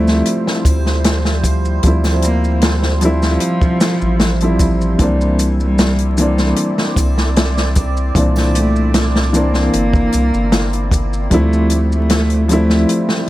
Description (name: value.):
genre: trip hop.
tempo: 76 BPM.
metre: 4/4.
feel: straight.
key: D minor.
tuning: A4 = 440 Hz.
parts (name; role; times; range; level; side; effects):
dark cello; melody; 0.0-13.0 s; F3 to Bb3; -20 LUFS; equal; tape echo.
dark upright piano; accompaniment; 0.0-13.3 s; Bb2 to E4; -19 LUFS; equal; tremolo, tape echo.
deep dark ambient pad; sustained chords; 0.0-13.3 s; F3 to D5; -24 LUFS; right 2 dB; chorus, built-in reverb.
round analog bass; bass; 0.0-12.9 s; G1 to D2; -16 LUFS; equal; none.
open jazz drum kit; drums; 0.1-13.3 s; hi-hat, kick drum, snare drum; -17 LUFS; equal; none.
maracas and triangle; percussion; 0.1-13.1 s; none; -32 LUFS; equal; none.
room: light reverb, studio ambience.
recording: vinyl crackle.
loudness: -12 LUFS.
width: side -16 dB against mid.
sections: 0.0-13.3 A section.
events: none.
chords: 0.0 Dm11; 5.0 C9; 11.3 Dm11.